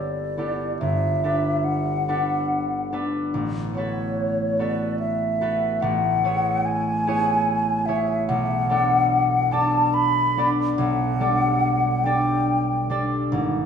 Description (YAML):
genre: classical, impressionist duo for flute and harp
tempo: 72 BPM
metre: 3/4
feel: rubato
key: G lydian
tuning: A4 = 442 Hz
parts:
  - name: mellow hollow silver concert flute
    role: melody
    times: 0.0-12.9 s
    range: C#5 to B5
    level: -22 LUFS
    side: left 1 dB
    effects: none
  - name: concert harp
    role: accompaniment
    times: 0.0-13.7 s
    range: G1 to D5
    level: -23 LUFS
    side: right 1 dB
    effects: none
room: wet stone room reverb, RT60 1.4 s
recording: heard from further back in the room, nothing above 10.4 kHz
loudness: -20 LUFS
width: side -7 dB against mid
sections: 0.0-13.7 A section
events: none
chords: 0.0 G69; 0.8 Bm7/G; 3.3 A69; 5.8 C#m7/A; 8.3 Bm7; 10.8 Gmaj9/B